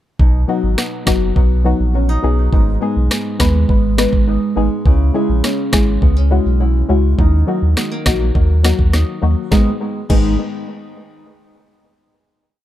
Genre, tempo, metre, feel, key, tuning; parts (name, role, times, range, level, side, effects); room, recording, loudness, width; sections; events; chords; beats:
dancehall; 103 BPM; 4/4; straight; G# minor; A4 = 440 Hz
nylon-string guitar; arpeggios; 0.2-10.3 s; G#2 to E4; -22 LUFS; right 2 dB; analog delay
warm sub bass; bass; 0.2-10.4 s; F#1 to D#2; -15 LUFS; equal
island pop drum kit; drums; 0.2-10.2 s; crash cymbal, kick drum, rim click, snare drum; -15 LUFS; equal
soft round pluck; accompaniment; 0.5-10.4 s; F#3 to B4; -20 LUFS; left 4 dB; chorus, analog delay
little or no reverb; echo-heavy mix; -13 LUFS; side -13 dB against mid
0.2-9.5 verse; 9.5-11.8 final chord
0.2 B; 2.5 G#m; 4.9 C#m; 7.2 D#m; 9.5 G#m
| 0.20 0.78 1.36 1.94 | 2.52 3.11 3.69 4.27 | 4.86 5.44 6.02 6.60 | 7.18 7.77 8.35 8.93 | 9.52 10.10